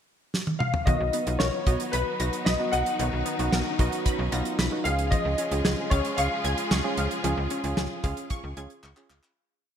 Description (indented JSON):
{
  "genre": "synth-pop",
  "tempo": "113 BPM",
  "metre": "4/4",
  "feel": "straight",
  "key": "unclear",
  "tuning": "A4 = 439 Hz",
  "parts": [
    { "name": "damped 70s drum kit", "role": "drums", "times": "0.3-9.4 s", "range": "handclaps, hi-hat, kick drum, snare drum, toms", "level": "-28 LUFS", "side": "equal", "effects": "gated reverb" },
    { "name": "warm grand piano", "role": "melody", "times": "0.6-8.8 s", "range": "B4 to F#5", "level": "-30 LUFS", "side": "left 2 dB", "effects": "ensemble chorus, ping-pong delay" },
    { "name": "warm analog keys", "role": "accompaniment", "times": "0.9-9.3 s", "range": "B3 to Ab4", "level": "-32 LUFS", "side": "right 2 dB", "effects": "chorus" },
    { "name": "clear studio string section", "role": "sustained chords", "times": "0.9-9.3 s", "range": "Db3 to Ab4", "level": "-33 LUFS", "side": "left 2 dB", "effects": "none" },
    { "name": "wide unison pluck", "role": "arpeggios", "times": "0.9-9.2 s", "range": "D#3 to A#6", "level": "-35 LUFS", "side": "left 1 dB", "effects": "analog chorus, ping-pong delay" },
    { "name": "slap-like FM bass", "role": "bass", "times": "0.9-9.2 s", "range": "B1 to Db2", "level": "-29 LUFS", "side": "equal", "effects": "none" }
  ],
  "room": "moderate plate reverb, RT60 2.1 s",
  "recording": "bright 1980s-style digital production",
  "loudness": "-24 LUFS",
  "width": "side -8 dB against mid",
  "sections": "0.0-0.9 pickup bar; 0.9-9.4 bridge",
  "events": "drum fill 0.3-0.9, 8.8-9.4; fade-out 7.2-9.4",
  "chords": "0.0 N.C.; 0.9 Bmaj7; 4.9 Db"
}